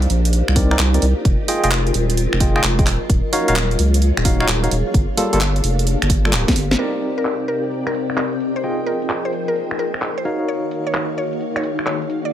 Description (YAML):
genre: UK garage, two-step garage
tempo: 130 BPM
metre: 4/4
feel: swing 67% on 16ths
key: C minor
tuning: A4 = 440 Hz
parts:
  - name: soft string machine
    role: sustained chords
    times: 0.0-12.3 s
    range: C3 to G5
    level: -28 LUFS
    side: left 1 dB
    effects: phaser, ensemble chorus, sidechain pumping
  - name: saturated sub bass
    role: bass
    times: 0.0-6.8 s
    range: D1 to Db2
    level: -18 LUFS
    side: equal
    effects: none
  - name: house drum kit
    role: drums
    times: 0.0-12.2 s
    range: finger snaps, handclaps, hi-hat, snare drum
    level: -22 LUFS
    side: right 1 dB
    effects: low-pass filter on hats, low-pass filter on snare, low-pass filter on room
  - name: granular cloud pad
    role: texture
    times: 0.0-12.3 s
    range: C4 to F5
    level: -26 LUFS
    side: left 1 dB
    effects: built-in reverb, sidechain pumping
  - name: barky tine electric piano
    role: stabs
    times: 0.6-12.3 s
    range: G3 to G5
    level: -23 LUFS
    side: equal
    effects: overdrive, fast tremolo, ping-pong delay
  - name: electronic kick drum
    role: drums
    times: 0.6-6.5 s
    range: none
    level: -18 LUFS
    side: equal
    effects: none
  - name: mallet-like synth pluck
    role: melody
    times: 6.8-12.3 s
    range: Bb4 to D5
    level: -26 LUFS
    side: left 1 dB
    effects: chorus, dub echo
room: light reverb, digital ambience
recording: none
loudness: -16 LUFS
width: side -11 dB against mid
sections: 0.0-6.8 A section; 6.8-12.3 B section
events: drum fill 6.4-6.8; band accent 6.7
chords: 0.0 Cm9; 1.3 Fm9; 2.9 Ebm9; 4.9 Gm9; 6.8 Cm9; 8.6 Fm9; 10.3 Ebm9